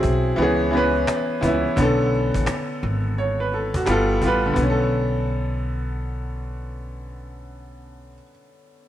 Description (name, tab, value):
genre	lo-fi hip hop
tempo	86 BPM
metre	4/4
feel	swing 65% on 16ths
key	B dorian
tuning	A4 = 440 Hz
part	clear upright piano	accompaniment	0.0-8.9 s	D3 to C#5	-21 LUFS	equal	none
part	upright bass	bass	0.0-8.2 s	G1 to C#2	-25 LUFS	equal	none
part	cajon	drums	0.0-4.8 s	none	-29 LUFS	equal	vintage 12-bit sampler grit
room	light reverb, small room reverb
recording	none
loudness	-19 LUFS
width	side -12 dB against mid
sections	0.0-4.6 A section; 4.6-7.3 B section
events	none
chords	0.4 C#m7; 1.8 Bm9; 3.9 G9; 4.6 Bm9